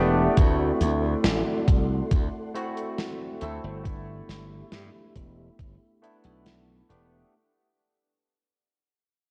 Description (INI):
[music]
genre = vaporwave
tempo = 69 BPM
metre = 4/4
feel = straight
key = G major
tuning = A4 = 443 Hz
[part]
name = barky tine electric piano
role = accompaniment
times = 0.0-7.4 s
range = A3 to A4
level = -30 LUFS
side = equal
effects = subtle chorus, tape echo
[part]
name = soft string machine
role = sustained chords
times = 0.0-7.3 s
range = G4 to C6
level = -39 LUFS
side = equal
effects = ensemble chorus, vintage 12-bit sampler grit
[part]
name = slap bass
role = bass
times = 0.0-7.2 s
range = E1 to G2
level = -30 LUFS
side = equal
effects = none
[part]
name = electronic kick drum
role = drums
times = 0.4-5.8 s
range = none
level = -24 LUFS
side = equal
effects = none
[part]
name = tight metal drum kit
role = drums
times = 0.4-7.1 s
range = hi-hat, snare drum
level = -34 LUFS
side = equal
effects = gated reverb
[sound]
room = light reverb, small room reverb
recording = cassette tape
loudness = -25 LUFS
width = mono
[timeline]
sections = 0.0-7.3 A section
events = fade-out 0.0-7.3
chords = 0.4 D7; 3.9 G6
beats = | 0.38 1.24 2.11 2.98 | 3.85 4.72 5.59 6.46